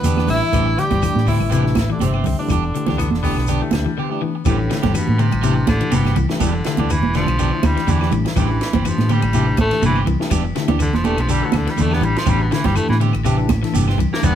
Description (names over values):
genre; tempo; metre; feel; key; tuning
afrobeat; 123 BPM; 4/4; swing 54% on 16ths; A minor; A4 = 440 Hz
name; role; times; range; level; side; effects
warm tenor saxophone; melody; 0.0-3.9 s; C4 to B4; -24 LUFS; equal; none
clear trombone; second line; 0.0-3.9 s; C3 to B3; -30 LUFS; right 4 dB; none
electric guitar at the edge of break-up; arpeggios; 0.0-14.3 s; C3 to E3; -23 LUFS; left 6 dB; none
electric guitar at the edge of break-up; stabs; 0.0-14.3 s; E3 to G4; -27 LUFS; right 8 dB; none
hollow-body short-scale fingered electric bass; bass; 0.0-14.3 s; E1 to A2; -20 LUFS; equal; none
compact cocktail drum kit; drums; 0.0-14.3 s; hi-hat, kick drum, ride cymbal, snare drum; -26 LUFS; equal; none
congas; percussion; 0.0-14.3 s; none; -23 LUFS; right 6 dB; none
shekere; percussion; 0.0-14.3 s; none; -28 LUFS; right 2 dB; none
tine electric piano; accompaniment; 0.2-14.2 s; E3 to A4; -27 LUFS; left 2 dB; medium tremolo
claves; percussion; 0.2-14.3 s; none; -38 LUFS; left 6 dB; none
raspy baritone saxophone; second line; 3.0-4.5 s; G3 to C4; -30 LUFS; left 5 dB; none
raspy baritone saxophone; melody; 4.5-14.3 s; A2 to B3; -23 LUFS; equal; none
room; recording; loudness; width
wet studio reverb, RT60 0.8 s; band playing live in one room; -15 LUFS; side -10 dB against mid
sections
0.0-4.5 A section; 4.5-14.3 B section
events
break 4.0-4.5; baritone saxophone solo 4.5-14.3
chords
0.0 Em7; 0.5 Am9; 2.5 Em7; 4.5 Am9; 6.4 Em7; 8.4 Am9; 10.3 Em7; 12.3 Am9